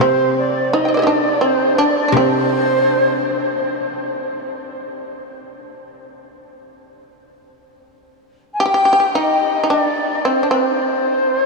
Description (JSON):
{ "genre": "japanese traditional, Japanese chamber music", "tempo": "56 BPM", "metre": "2/4", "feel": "rubato", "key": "unclear", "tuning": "A4 = 442 Hz", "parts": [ { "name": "bright reedy long shakuhachi", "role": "melody", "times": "0.0-3.7, 8.5-11.5 s", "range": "C5 to Ab5", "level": "-18 LUFS", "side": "equal", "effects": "tape echo" }, { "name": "shamisen", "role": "second line", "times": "0.0-3.7, 8.6-11.5 s", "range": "C4 to G5", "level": "-19 LUFS", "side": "right 1 dB", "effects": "none" }, { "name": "koto", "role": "accompaniment", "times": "0.0-5.3 s", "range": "C3", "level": "-23 LUFS", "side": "left 3 dB", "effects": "none" } ], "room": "wet huge ambient reverb, RT60 8.2 s", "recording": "dreamy mix soaked in reverb", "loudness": "-14 LUFS", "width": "side -2 dB against mid", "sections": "0.0-8.6 A section; 8.6-11.5 B section", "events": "none", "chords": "none" }